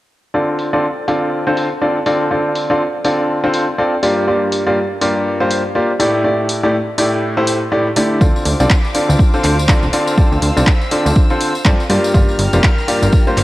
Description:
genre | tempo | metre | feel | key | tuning
piano house | 122 BPM | 4/4 | swing 59% on 16ths | D minor | A4 = 440 Hz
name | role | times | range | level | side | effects
bright upright piano | riff | 0.3-13.4 s | G2 to D5 | -15 LUFS | equal | sidechain pumping, low-pass filter
punchy analog drum machine | drums | 0.6-13.4 s | handclaps, hi-hat | -22 LUFS | equal | overdrive, low-pass filter on hats, cassette tape, low-pass filter on snare
warm chamber violin section | sustained chords | 8.2-13.4 s | Bb4 to F6 | -26 LUFS | left 1 dB | sidechain pumping
plucky analog bass | bass | 8.2-13.4 s | D1 to G2 | -16 LUFS | equal | sidechain pumping
electronic kick drum | drums | 8.2-13.2 s | none | -12 LUFS | equal | overdrive, cassette tape
tambourine | percussion | 8.2-13.4 s | none | -30 LUFS | left 3 dB | none
room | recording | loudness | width
moderate lush hall reverb, RT60 2.0 s, small room ambience | home recording on cassette | -13 LUFS | side -17 dB against mid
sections
0.3-13.4 A section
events
none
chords
0.3 Dm7; 4.0 Gm7; 6.0 A7sus4; 8.2 Dm7; 11.9 Gm7

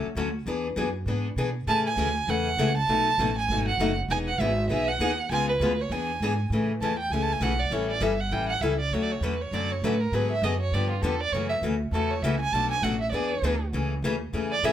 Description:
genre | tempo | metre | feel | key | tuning
acoustic string swing (jazz manouche) | 199 BPM | 4/4 | swing 59% on 8ths | A major from 6.5 s | A4 = 440 Hz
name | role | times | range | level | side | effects
picked acoustic archtop guitar | accompaniment | 0.0-14.7 s | B2 to A4 | -28 LUFS | left 4 dB | none
upright bass | bass | 0.0-14.7 s | E1 to B2 | -29 LUFS | right 1 dB | none
warm violin | melody | 1.7-14.7 s | F4 to A5 | -27 LUFS | right 4 dB | none
room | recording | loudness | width
light reverb | none | -24 LUFS | side -10 dB against mid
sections
0.0-6.5 A section; 6.5-14.7 B section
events
violin solo 6.5-14.7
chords
0.5 E7; 1.7 Amaj7; 2.9 B7; 4.1 Emaj7; 5.3 C#7; 5.9 E7; 6.5 Amaj7; 7.7 A7; 8.9 Dmaj7; 10.1 G#m7b5; 10.7 G7; 11.3 F#m7; 12.5 Bm7; 13.1 E7; 13.7 Amaj7

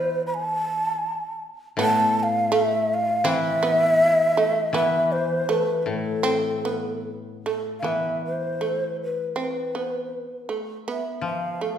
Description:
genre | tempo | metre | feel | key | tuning
japanese traditional, Japanese chamber music | 81 BPM | 4/4 | rubato | A hirajoshi | A4 = 437 Hz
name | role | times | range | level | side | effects
breathy mellow shakuhachi | melody | 0.0-11.8 s | A4 to B5 | -23 LUFS | equal | none
koto | accompaniment | 0.0-11.8 s | A2 to B4 | -29 LUFS | left 3 dB | none
shamisen | second line | 1.8-11.8 s | A3 to C4 | -28 LUFS | right 4 dB | none
room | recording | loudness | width
wet recital hall reverb, RT60 1.4 s | recorded in a church or concert hall | -21 LUFS | side -9 dB against mid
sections
0.0-7.9 A section; 7.9-11.8 B section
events
none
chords
none

